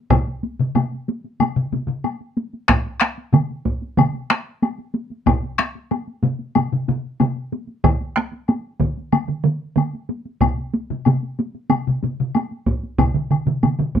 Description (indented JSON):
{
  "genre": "japanese traditional, taiko drum ensemble",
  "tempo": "93 BPM",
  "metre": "4/4",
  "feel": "straight",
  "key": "none",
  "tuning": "none",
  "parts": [
    { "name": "solo taiko drums", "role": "percussion", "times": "0.1-14.0 s", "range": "none", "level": "-21 LUFS", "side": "right 1 dB", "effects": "none" },
    { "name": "taiko ensemble", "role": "percussion", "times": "0.1-14.0 s", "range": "none", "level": "-21 LUFS", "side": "equal", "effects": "none" },
    { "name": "taiko ensemble", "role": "percussion", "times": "0.1-13.9 s", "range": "none", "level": "-21 LUFS", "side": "left 2 dB", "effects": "none" },
    { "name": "woodblock", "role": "percussion", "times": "0.1-13.8 s", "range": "none", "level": "-25 LUFS", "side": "left 8 dB", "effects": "none" },
    { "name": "taiko ensemble", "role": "percussion", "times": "2.7-13.9 s", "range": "none", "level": "-20 LUFS", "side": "right 4 dB", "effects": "none" }
  ],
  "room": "light reverb",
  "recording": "none",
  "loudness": "-19 LUFS",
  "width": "side -9 dB against mid",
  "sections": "0.0-14.0 A section",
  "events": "none",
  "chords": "none"
}